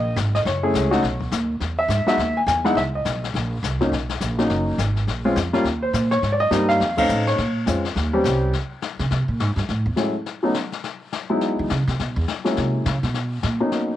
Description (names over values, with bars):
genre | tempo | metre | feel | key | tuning
jazz piano trio | 208 BPM | 4/4 | swing 61% on 8ths | unclear | A4 = 435 Hz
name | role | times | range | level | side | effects
warm baby grand piano | melody | 0.0-14.0 s | Gb3 to G#5 | -20 LUFS | equal | none
upright bass | bass | 0.0-13.6 s | Gb1 to D#3 | -23 LUFS | right 1 dB | none
jazz brush drum kit | drums | 0.2-14.0 s | brushed snare drum, hi-hat, kick drum, ride cymbal, snare drum | -29 LUFS | left 8 dB | none
room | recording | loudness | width
light reverb, small room ambience | 1960s-style stereo | -19 LUFS | side -12 dB against mid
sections
0.0-8.5 A section; 8.5-14.0 B section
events
band accent 6.9; upright bass solo 8.5-14.0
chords
0.5 Gbm7; 1.0 B; 1.6 Emaj7; 2.8 Badd9; 3.3 N.C.; 3.9 Bmaj7; 5.1 Bbm; 5.7 Eb5; 6.2 Abmaj7; 6.8 F7b13; 7.4 Bbm7; 8.0 Eb6; 8.5 Abmaj7; 9.7 Gbm7; 10.3 N.C.; 10.8 Emaj7; 12.0 Dbm7 (rootless); 12.6 Gb7; 13.1 Bmaj7